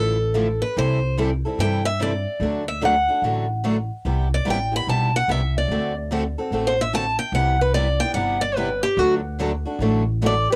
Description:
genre	acoustic string swing (jazz manouche)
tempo	146 BPM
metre	4/4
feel	swing 63% on 8ths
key	unclear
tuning	A4 = 440 Hz
part	picked steel-string acoustic guitar	melody	0.0-10.6 s	F#4 to B5	-24 LUFS	equal	cassette tape
part	picked steel-string acoustic guitar	accompaniment	0.0-10.3 s	C3 to A4	-29 LUFS	equal	cassette tape
part	picked steel-string acoustic guitar	accompaniment	0.0-10.3 s	C3 to A4	-31 LUFS	equal	cassette tape
part	upright bass	bass	0.0-10.5 s	G1 to G2	-26 LUFS	equal	tube saturation
part	breathy soprano saxophone	second line	10.2-10.6 s	G4 to A4	-31 LUFS	equal	cassette tape
room	moderate booth ambience, RT60 0.2 s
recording	home recording on cassette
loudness	-22 LUFS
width	mono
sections	0.0-10.6 A section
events	steel-string acoustic guitar solo 0.0-10.6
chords	0.0 Dmadd9; 0.8 C6; 2.4 D; 4.1 Cmaj7; 5.7 D7; 7.3 Cmaj7; 9.0 D

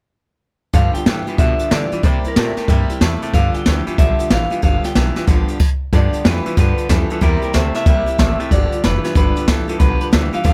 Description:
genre	rockabilly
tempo	185 BPM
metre	4/4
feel	swing 64% on 8ths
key	G mixolydian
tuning	A4 = 440 Hz
part	electric guitar through a small old amp	melody	0.7-10.5 s	A4 to G5	-25 LUFS	equal	analog delay
part	picked steel-string acoustic guitar	accompaniment	0.7-10.5 s	G2 to G4	-29 LUFS	equal	none
part	twangy electric guitar	riff	0.7-10.5 s	G2 to A3	-26 LUFS	equal	none
part	upright bass	bass	0.7-10.5 s	F1 to D3	-21 LUFS	equal	none
part	jazz brush drum kit	drums	0.7-10.5 s	crash cymbal, hi-hat, kick drum, snare drum	-19 LUFS	equal	none
room	little or no reverb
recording	none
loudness	-16 LUFS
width	mono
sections	0.7-5.9 A section; 5.9-10.5 B section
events	none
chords	0.7 G7; 2.0 C7; 3.3 G7; 7.2 C7; 8.5 G7

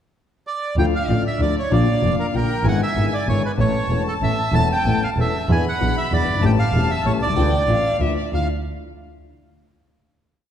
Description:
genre	tango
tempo	191 BPM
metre	3/4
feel	rubato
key	D harmonic minor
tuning	A4 = 440 Hz
part	bandoneon	melody	0.5-8.5 s	A4 to A5	-24 LUFS	right 2 dB	none
part	rich violin	second line	0.8-8.5 s	D5 to B5	-28 LUFS	left 4 dB	none
part	warm concert grand piano	accompaniment	0.8-8.5 s	E1 to A4	-22 LUFS	left 4 dB	none
part	rich double bass	bass	0.8-8.5 s	E1 to E2	-21 LUFS	right 2 dB	none
room	wet concert hall reverb, RT60 1.8 s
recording	dark, warm production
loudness	-17 LUFS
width	side -9 dB against mid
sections	0.0-0.8 pickup bar; 0.8-8.3 A section; 8.3-9.3 final chord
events	none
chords	0.0 N.C.; 0.8 Dm; 1.7 Bb; 2.7 E7/G#; 3.6 A; 5.5 E7; 6.4 A7; 7.4 Dmadd9

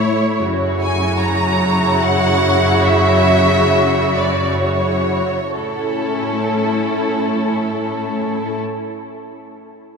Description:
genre	cinematic, emotional film score for orchestra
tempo	free time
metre	none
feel	none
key	A major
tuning	A4 = 440 Hz
part	rich studio violin section	melody	0.0-8.6 s	A4 to A#5	-21 LUFS	equal	none
part	rich studio violin section	second line	0.0-8.6 s	E4 to C#5	-20 LUFS	right 2 dB	none
part	warm studio viola section	accompaniment	0.0-8.6 s	C#3 to E4	-21 LUFS	left 1 dB	none
part	rich studio cello section	bass	0.0-8.6 s	F#2 to A2	-21 LUFS	equal	none
room	wet cathedral reverb, RT60 4.9 s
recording	in a vast, echoing space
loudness	-14 LUFS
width	side -5 dB against mid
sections	0.0-5.6 A section; 5.6-8.4 B section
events	slowing down 0.0-5.6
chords	0.4 F#7(no3); 5.6 A

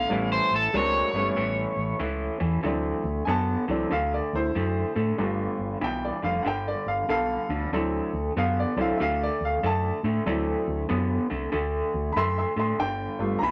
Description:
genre	electric blues shuffle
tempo	95 BPM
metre	4/4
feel	swing 64% on 8ths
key	unclear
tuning	A4 = 440 Hz
part	crunchy overdriven guitar	melody	0.0-2.0 s	A4 to F5	-27 LUFS	equal	none
part	electric guitar through a small old amp	riff	0.0-13.5 s	G2 to B3	-32 LUFS	equal	tremolo
part	fingered electric bass	bass	0.0-13.5 s	F1 to A2	-32 LUFS	equal	none
part	clear upright piano	accompaniment	0.1-13.5 s	E3 to C6	-30 LUFS	equal	none
room	moderate studio reverb, RT60 0.6 s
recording	none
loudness	-26 LUFS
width	mono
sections	0.0-2.6 A section; 2.6-13.5 B section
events	none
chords	0.1 A9; 2.6 D9; 5.2 G9; 7.7 D9; 12.8 G9

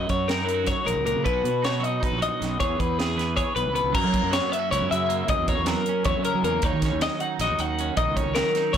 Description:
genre	math rock and midwest emo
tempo	313 BPM (eighths)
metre	7/8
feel	straight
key	unclear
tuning	A4 = 440 Hz
part	twelve-string electric guitar	accompaniment	0.0-8.8 s	E2 to B4	-29 LUFS	right 14 dB	spring reverb
part	twelve-string electric guitar	arpeggios	0.0-8.8 s	G#4 to F#5	-25 LUFS	left 4 dB	plate reverb
part	fuzz fingered electric bass	bass	0.0-8.8 s	A#1 to F#3	-28 LUFS	right 1 dB	overdrive
part	crisp fusion drum kit	drums	0.1-8.8 s	crash cymbal, hi-hat, kick drum, snare drum	-29 LUFS	right 1 dB	none
room	light reverb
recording	blown-out, overdriven recording, overdrive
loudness	-22 LUFS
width	side -8 dB against mid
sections	0.0-4.0 A section; 4.0-8.8 B section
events	none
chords	0.0 D#m7/F#; 1.3 B; 2.6 E6; 4.0 F#7; 6.6 D#m7

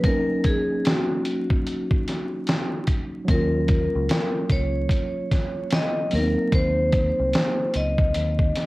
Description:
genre	lo-fi hip hop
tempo	74 BPM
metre	4/4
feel	swing 63% on 16ths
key	Eb minor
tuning	A4 = 437 Hz
part	vibraphone with hard mallets	melody	0.0-8.7 s	Gb4 to Eb5	-26 LUFS	left 1 dB	low-pass filter, cassette tape, plate reverb
part	tine electric piano	accompaniment	0.0-8.7 s	Gb3 to F4	-27 LUFS	equal	medium stereo tremolo, cassette tape, low-pass filter, plate reverb
part	dusty soul sampler-style drum kit	drums	0.0-8.7 s	hi-hat, kick drum, snare drum	-23 LUFS	equal	cassette tape
part	deep dub fingered electric bass	bass	3.3-8.5 s	C2 to Eb2	-25 LUFS	equal	none
room	moderate studio ambience, RT60 0.5 s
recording	home recording on cassette, vinyl crackle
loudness	-20 LUFS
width	side -20 dB against mid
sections	0.0-8.7 A section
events	break 0.0-3.3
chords	0.0 Gb6; 3.3 Ebm7; 6.1 Cm7b5

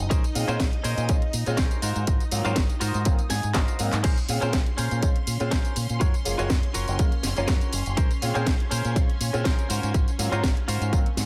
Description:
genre	filtered disco house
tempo	122 BPM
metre	4/4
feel	swing 54% on 16ths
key	Bb minor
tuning	A4 = 440 Hz
part	string machine, full ensemble	sustained chords	0.0-11.3 s	Db4 to C6	-38 LUFS	equal	phaser, ensemble chorus, sidechain pumping
part	fingered electric bass with an envelope filter	bass	0.0-11.3 s	Gb1 to Bb2	-30 LUFS	equal	sidechain pumping
part	house drum kit	drums	0.0-11.3 s	crash cymbal, handclaps, hi-hat, snare drum, tambourine	-33 LUFS	equal	overdrive, sidechain pumping on hats, sidechain pumping on perc, sidechain pumping on cymbals
part	direct-recorded clean electric guitar	riff	0.1-11.0 s	Db4 to Ab5	-34 LUFS	equal	sidechain pumping
part	electronic kick drum	drums	0.1-11.0 s	none	-26 LUFS	equal	overdrive
part	bright grand piano	accompaniment	0.3-11.0 s	Gb3 to F4	-33 LUFS	equal	phaser, sidechain pumping
room	light reverb, digital ambience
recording	none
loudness	-24 LUFS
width	mono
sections	0.0-11.3 A section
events	clean electric guitar fill 3.1-4.0; drum fill 3.5-4.0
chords	0.1 Bbm9; 1.8 Ab13; 4.0 Bbm9; 6.0 Gbmaj7; 8.0 Bbm9; 9.7 Ab13

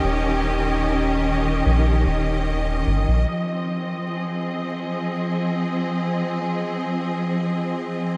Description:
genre	ambient dub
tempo	74 BPM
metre	4/4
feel	straight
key	F minor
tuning	A4 = 440 Hz
part	clear symphonic string section	sustained chords	0.0-8.2 s	Eb3 to Eb5	-25 LUFS	equal	low-pass filter
part	soft dub sub bass	bass	0.0-3.3 s	Eb1 to Bb1	-24 LUFS	equal	none
room	wet huge ambient reverb, RT60 8.3 s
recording	dreamy mix soaked in reverb, vinyl crackle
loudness	-23 LUFS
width	mono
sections	0.0-3.3 A section; 3.3-8.2 B section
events	none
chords	0.0 Eb7; 3.3 Fm7

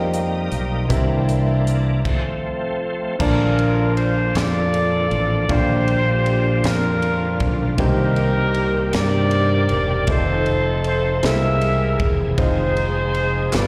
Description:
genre	slow gospel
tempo	52 BPM (dotted quarters)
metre	6/8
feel	straight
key	Bb major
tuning	A4 = 438 Hz
part	warm upright piano	accompaniment	0.0-13.7 s	G2 to A5	-27 LUFS	equal	none
part	bright tonewheel organ	sustained chords	0.0-13.7 s	D3 to A4	-30 LUFS	equal	slow rotary speaker, overdrive, chorus vibrato
part	dark studio string section	sustained chords	0.0-2.0 s	E5 to Eb6	-37 LUFS	equal	none
part	mellow fretless electric bass	bass	0.0-13.7 s	E1 to G2	-23 LUFS	equal	none
part	crisp fusion drum kit	drums	0.1-13.7 s	crash cymbal, hi-hat, kick drum, ride cymbal, snare drum	-29 LUFS	equal	none
part	mellow horn section	melody	3.2-13.7 s	D4 to E5	-24 LUFS	equal	slapback echo
part	group handclap	percussion	13.5-13.7 s	none	-33 LUFS	equal	none
room	little or no reverb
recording	live gig heard through the venue's PA, recital hall reverb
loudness	-19 LUFS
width	mono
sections	0.0-3.2 A section; 3.2-13.7 B section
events	tonewheel organ solo 0.0-3.2; stop 2.0-3.2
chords	0.0 F9sus4; 0.9 C7; 2.0 F; 3.2 Bbmaj7; 5.5 Gm7/Bb; 7.8 Cm7; 10.1 F7; 11.2 Caug7; 12.4 Fm7

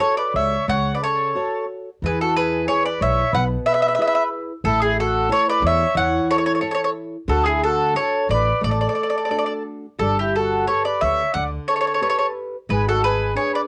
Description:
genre	italian folk, Italian serenade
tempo	90 BPM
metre	4/4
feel	rubato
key	unclear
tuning	A4 = 440 Hz
part	mandolin	melody	0.0-13.6 s	G4 to F#5	-22 LUFS	equal	none
part	mellow accordion	second line	0.0-13.6 s	D4 to D5	-28 LUFS	equal	cassette tape
part	nylon-string guitar	accompaniment	0.0-13.7 s	B2 to C#5	-30 LUFS	equal	cassette tape
part	upright bass	bass	0.3-13.3 s	G1 to E2	-27 LUFS	equal	tube saturation
room	light reverb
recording	home recording on cassette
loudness	-20 LUFS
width	mono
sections	0.0-13.7 A section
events	none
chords	0.0 F#m; 2.0 E; 4.6 A; 7.3 D; 10.0 Gadd9; 12.7 G#dim

